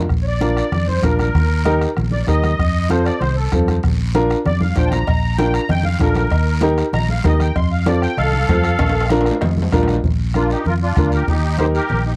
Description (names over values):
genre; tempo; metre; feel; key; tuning
latin, cumbia; 193 BPM; 4/4; straight; Bb major; A4 = 439 Hz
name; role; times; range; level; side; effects
fingered electric bass; bass; 0.0-12.2 s; Bb1 to F2; -21 LUFS; equal; none
bombo; percussion; 0.1-11.7 s; none; -23 LUFS; equal; none
congas; percussion; 0.1-12.1 s; none; -28 LUFS; equal; none
guiro; percussion; 0.1-12.2 s; none; -38 LUFS; equal; none
musette accordion; melody; 0.2-12.1 s; D4 to C6; -26 LUFS; equal; analog delay
warm upright piano; accompaniment; 0.4-11.8 s; C4 to C5; -22 LUFS; equal; none
cowbell and timbales; percussion; 5.1-10.0 s; none; -29 LUFS; equal; none
room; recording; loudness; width
light reverb; dark, warm production, vinyl crackle; -17 LUFS; mono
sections
0.1-10.0 A section; 10.0-12.2 B section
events
accordion solo 0.1-10.0; drum fill 4.6-5.1, 8.8-10.0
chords
0.1 Bb; 1.4 Eb; 2.6 F7; 3.8 Bb; 6.3 Eb; 7.6 F; 8.8 Bb; 11.3 Eb